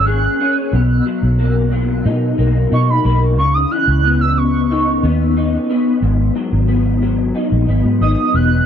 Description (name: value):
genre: indie pop, bedroom pop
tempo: 91 BPM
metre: 4/4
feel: straight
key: unclear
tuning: A4 = 439 Hz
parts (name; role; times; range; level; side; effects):
- warbly nostalgic lead; melody; 0.0-8.7 s; B5 to F#6; -19 LUFS; right 4 dB; lush chorus, tape echo
- electric guitar through a small old amp; accompaniment; 0.0-8.7 s; F#2 to G#4; -17 LUFS; left 3 dB; ensemble chorus, warbly pitch drift
- vintage muted fingered electric bass; bass; 0.0-8.6 s; E1 to B2; -15 LUFS; equal; none
room: digital ambience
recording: dry, close 1970s-style studio recording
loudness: -13 LUFS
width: side -8 dB against mid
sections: 0.0-8.7 A section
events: none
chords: 0.0 F#add9; 0.7 Bmaj7; 3.4 C#m9; 6.0 G#m7